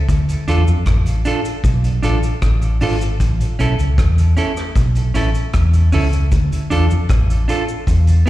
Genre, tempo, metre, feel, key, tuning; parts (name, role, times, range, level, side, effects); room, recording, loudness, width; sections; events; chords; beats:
roots reggae; 77 BPM; 4/4; straight; A4 = 439 Hz
vintage muted fingered electric bass; bass; 0.0-8.2 s; G#1 to F2; -15 LUFS; equal
vintage drum kit; drums; 0.1-8.3 s; hi-hat, kick drum, rim click; -20 LUFS; equal
cabasa; percussion; 0.1-8.3 s; -42 LUFS; right 2 dB
clean electric guitar; accompaniment; 0.5-8.3 s; B3 to A4; -22 LUFS; right 3 dB; dub echo, slapback echo
small room ambience; live gig heard through the venue's PA, recital hall reverb; -14 LUFS; side -15 dB against mid
0.0-8.3 A section
0.1 Dm; 3.2 A; 6.3 Dm
| 0.09 0.87 1.64 2.42 | 3.20 3.98 4.76 5.54 | 6.31 7.09 7.87